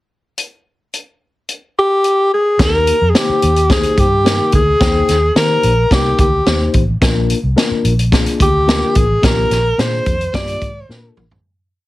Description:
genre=uptempo 1960s-style soul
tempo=108 BPM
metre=4/4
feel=straight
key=Eb major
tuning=A4 = 440 Hz
part: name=vintage drum kit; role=drums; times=0.4-11.4 s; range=hi-hat, kick drum, snare drum, toms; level=-16 LUFS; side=equal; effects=none
part: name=breathy alto saxophone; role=melody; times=1.8-11.1 s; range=G4 to D5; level=-14 LUFS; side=equal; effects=none
part: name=mellow tine electric piano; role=accompaniment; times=2.6-11.2 s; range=Bb3 to G5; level=-21 LUFS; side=left 5 dB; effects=slow stereo tremolo
part: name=vintage muted fingered electric bass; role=bass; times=2.6-11.4 s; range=A1 to Eb3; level=-17 LUFS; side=equal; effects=none
room=light reverb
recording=heavily compressed radio sound, multiband compression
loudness=-11 LUFS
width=side -17 dB against mid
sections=0.4-2.6 pickup bar; 2.6-11.4 verse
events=fade-out 9.2-11.4; drum fill 10.9-11.4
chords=0.4 N.C.; 2.6 Eb; 7.0 Bb

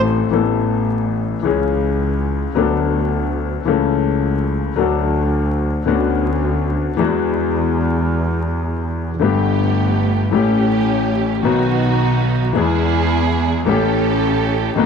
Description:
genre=tango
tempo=108 BPM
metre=4/4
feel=rubato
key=A major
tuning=A4 = 441 Hz
part: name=clear concert grand piano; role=accompaniment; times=0.0-14.9 s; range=G1 to A4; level=-17 LUFS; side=left 6 dB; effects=none
part: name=clear double bass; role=bass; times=0.0-14.9 s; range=G1 to E2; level=-21 LUFS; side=right 2 dB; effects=none
part: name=warm studio string section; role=stabs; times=9.2-14.9 s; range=A3 to A4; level=-21 LUFS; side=right 10 dB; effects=none
room=moderate echo chamber reverb, RT60 1.6 s, small room ambience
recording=1960s-style stereo with parts hard left and right, vinyl crackle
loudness=-15 LUFS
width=side -6 dB against mid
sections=0.3-14.9 A section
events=none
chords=0.3 Asus2; 1.4 C#m; 2.6 D6; 3.7 A/C#; 4.8 D; 5.9 Bmadd9/D; 7.0 Eadd9; 9.2 Gadd9; 10.3 A7; 11.4 B; 12.6 E; 13.7 A7

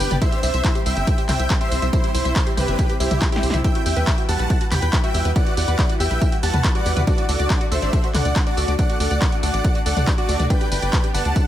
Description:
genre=uplifting trance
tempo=140 BPM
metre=4/4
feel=straight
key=E minor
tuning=A4 = 440 Hz
part: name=big supersaw lead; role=melody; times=0.0-11.5 s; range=E4 to B5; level=-25 LUFS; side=right 1 dB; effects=sidechain pumping, digital delay
part: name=lush unison pad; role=sustained chords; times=0.0-11.4 s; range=G3 to D5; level=-30 LUFS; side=equal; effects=chorus, phaser, sidechain pumping
part: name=analog pluck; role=arpeggios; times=0.0-11.4 s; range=D4 to E5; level=-30 LUFS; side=left 4 dB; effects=chorus, phaser, sidechain pumping, digital delay
part: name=tight sequencer bass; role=bass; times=0.0-11.3 s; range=G1 to E2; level=-22 LUFS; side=equal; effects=sidechain pumping
part: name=punchy analog drum machine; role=drums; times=0.0-11.4 s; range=handclaps, hi-hat, snare drum, tambourine, toms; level=-26 LUFS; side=equal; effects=sidechain pumping on hats, sidechain pumping on perc, sidechain pumping on toms
part: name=electronic kick drum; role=drums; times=0.2-11.4 s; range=none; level=-20 LUFS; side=equal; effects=none
room=digital ambience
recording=none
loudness=-17 LUFS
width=side -12 dB against mid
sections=0.0-11.5 A section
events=drum fill 3.2-3.6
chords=0.2 C; 3.6 Emadd9; 7.1 D; 10.5 G

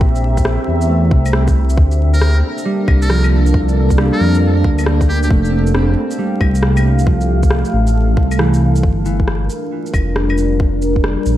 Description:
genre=future garage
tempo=136 BPM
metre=4/4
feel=swing 65% on 16ths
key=G dorian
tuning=A4 = 441 Hz
part: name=deep dark ambient pad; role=sustained chords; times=0.0-11.4 s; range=G3 to Bb5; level=-20 LUFS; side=equal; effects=chorus, built-in reverb, sidechain pumping
part: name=dark detuned saw bass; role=bass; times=0.0-11.4 s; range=F1 to F2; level=-14 LUFS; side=equal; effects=sidechain pumping
part: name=electronic kick drum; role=drums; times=0.0-11.0 s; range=none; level=-14 LUFS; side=equal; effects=none
part: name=electronic shaker, rim click and claves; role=drums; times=0.2-11.4 s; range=none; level=-23 LUFS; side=left 1 dB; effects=none
part: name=mellow electric guitar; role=accompaniment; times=0.9-9.0 s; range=E3 to C4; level=-22 LUFS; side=right 1 dB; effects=sidechain pumping, ping-pong delay
part: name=trumpet with metal mute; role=melody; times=2.1-5.3 s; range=G4 to Bb4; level=-26 LUFS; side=equal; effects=diffuse ambient delay
room=light reverb, digital ambience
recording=vinyl crackle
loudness=-12 LUFS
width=side -13 dB against mid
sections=0.0-8.8 A section; 8.8-11.4 B section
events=kick drops out 8.4-8.8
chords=0.0 C7; 1.8 Bbmaj7; 5.3 Fadd9; 8.8 Gm7

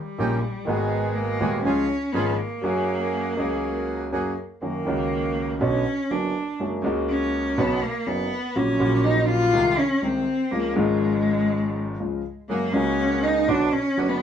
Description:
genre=tango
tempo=122 BPM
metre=4/4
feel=rubato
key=F# major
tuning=A4 = 441 Hz
part: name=warm cello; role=second line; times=0.0-14.2 s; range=G3 to E#4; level=-24 LUFS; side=equal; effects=none
part: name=warm concert grand piano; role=accompaniment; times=0.2-14.2 s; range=D#1 to G#4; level=-24 LUFS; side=equal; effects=none
part: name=bandoneon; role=stabs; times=0.2-4.3, 12.5-14.2 s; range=A#3 to G#4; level=-31 LUFS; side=right 2 dB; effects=none
room=wet studio ambience, RT60 0.5 s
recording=band playing live in one room, nothing above 10.8 kHz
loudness=-21 LUFS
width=side -8 dB against mid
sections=0.0-4.6 A section; 4.6-14.2 A section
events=cello solo 0.0-4.6, 4.6-14.2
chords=0.0 D#7; 0.7 G#m7; 1.7 C#; 2.6 F#add9; 4.6 F#6; 5.6 Bm; 6.6 F#add9; 7.6 Badd9; 8.6 F#/A#; 9.5 G#/B#; 10.5 C#; 12.5 F#add9; 13.5 Bm

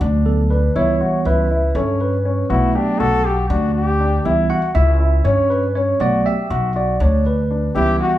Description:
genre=progressive instrumental, progressive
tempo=240 BPM (eighths)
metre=7/8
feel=straight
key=unclear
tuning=A4 = 440 Hz
part: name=warm grand piano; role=arpeggios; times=0.0-8.2 s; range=C#4 to G4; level=-22 LUFS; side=left 2 dB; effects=none
part: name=upright bass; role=bass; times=0.0-8.0 s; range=B1 to G2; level=-18 LUFS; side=equal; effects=none
part: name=bright tine electric piano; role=accompaniment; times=0.3-8.2 s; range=E3 to F#5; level=-20 LUFS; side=right 2 dB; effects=medium stereo tremolo
part: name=clear trombone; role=second line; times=2.5-4.3, 7.8-8.2 s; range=D4 to A4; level=-20 LUFS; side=left 2 dB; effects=none
room=wet large studio reverb, RT60 0.8 s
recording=band playing live in one room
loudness=-15 LUFS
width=side -14 dB against mid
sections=0.0-8.2 A section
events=tine electric piano solo 0.0-8.2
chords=0.0 Gmaj7 (rootless); 0.8 C#m7b5; 2.5 Gmaj7/B; 4.3 C#m7b5; 6.0 Gmaj7/B (rootless)

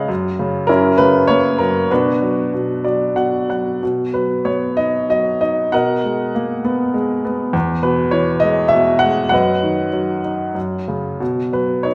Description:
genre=classical, lyrical solo piano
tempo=90-103 BPM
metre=3/4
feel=rubato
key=B minor, B major from 3.8 s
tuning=A4 = 443 Hz
part: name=clear upright piano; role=solo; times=0.0-11.9 s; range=E2 to G#5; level=-18 LUFS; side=equal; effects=none
room=wet recital hall reverb, RT60 1.7 s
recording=none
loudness=-17 LUFS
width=mono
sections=0.0-3.8 A section; 3.8-11.9 B section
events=upright piano fill 2.5-3.8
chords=0.1 F#5; 0.7 F#7; 1.9 Bm; 3.8 B; 5.7 G#madd9/B; 7.5 E; 9.3 B/F#; 10.6 F#5; 11.2 B

